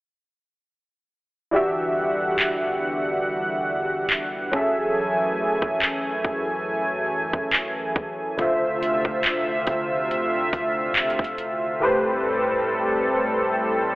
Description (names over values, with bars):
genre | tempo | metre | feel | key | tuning
contemporary R&B | 70 BPM | 4/4 | swing 54% on 16ths | unclear | A4 = 440 Hz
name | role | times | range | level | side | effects
warm analog keys | accompaniment | 1.5-14.0 s | A2 to E5 | -24 LUFS | equal | chorus
chorused pulse-width pad | sustained chords | 1.5-14.0 s | D2 to G#5 | -25 LUFS | equal | none
trap drum kit | drums | 2.4-11.6 s | handclaps, hi-hat, kick drum | -24 LUFS | equal | none
room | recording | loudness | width
moderate lush hall reverb, RT60 2.4 s | telephone sound | -21 LUFS | side -19 dB against mid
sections
1.5-14.0 A section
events
none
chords
1.5 Em9; 4.5 F#m9; 8.4 Dm9; 11.8 Am9